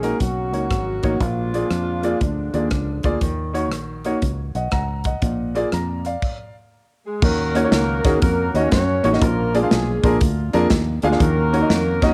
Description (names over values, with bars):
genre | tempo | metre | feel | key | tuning
uptempo gospel | 120 BPM | 4/4 | swing 66% on 8ths | Eb minor | A4 = 440 Hz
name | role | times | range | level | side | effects
mellow horn section | melody | 0.0-3.2, 7.1-12.1 s | D3 to Db5 | -26 LUFS | equal | none
clear concert grand piano | accompaniment | 0.0-12.1 s | Bb2 to Bb5 | -24 LUFS | equal | cassette tape
fingered electric bass | bass | 0.0-12.1 s | Ab1 to Gb2 | -26 LUFS | equal | none
modern studio drum kit | drums | 0.0-12.1 s | crash cymbal, hi-hat, kick drum, rim click, snare drum | -24 LUFS | equal | cassette tape
room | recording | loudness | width
light reverb, studio ambience | home recording on cassette | -20 LUFS | mono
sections
0.0-7.2 A section; 7.2-12.1 B section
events
stop 6.2-7.2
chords
0.0 Ebm7; 1.2 Bb7; 3.2 Ebm7; 5.2 Bb; 7.2 Ebm7; 9.2 Bb7; 11.2 Ebm7